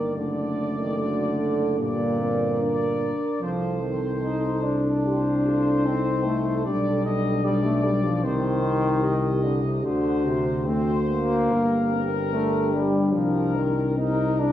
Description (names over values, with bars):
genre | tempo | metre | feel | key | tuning
classical, hymn-like piece for brass band | 74 BPM | 4/4 | rubato | G minor | A4 = 439 Hz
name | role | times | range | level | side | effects
mellow trumpet section | melody | 0.0-14.5 s | Bb4 to Eb5 | -31 LUFS | left 2 dB | none
mellow French horn section | second line | 0.0-14.5 s | F#4 to Bb4 | -31 LUFS | right 5 dB | none
mellow euphonium | accompaniment | 0.0-14.5 s | A3 to G4 | -28 LUFS | left 3 dB | none
warm trombone | accompaniment | 0.0-14.5 s | Bb2 to Eb4 | -25 LUFS | equal | none
mellow tuba | bass | 0.0-14.5 s | F#1 to D2 | -27 LUFS | left 1 dB | none
room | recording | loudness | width
wet stone room reverb, RT60 1.3 s | studio reverb | -21 LUFS | side -12 dB against mid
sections
0.0-14.5 A section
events
none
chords
0.2 D/F#; 1.8 Gm; 3.4 Cm; 6.7 G/B; 8.2 Cm; 9.8 D7; 11.5 Gm; 13.1 C5